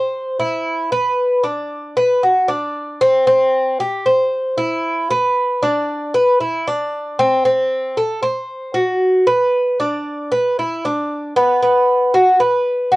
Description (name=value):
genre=latin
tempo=115 BPM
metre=4/4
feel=straight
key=unclear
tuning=A4 = 440 Hz
part: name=Cuban tres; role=solo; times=0.0-13.0 s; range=B3 to C5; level=-15 LUFS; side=equal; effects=cassette tape
room=moderate booth ambience, RT60 0.2 s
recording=home recording on cassette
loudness=-15 LUFS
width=side -19 dB against mid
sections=0.0-11.6 A section; 11.6-13.0 B section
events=none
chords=none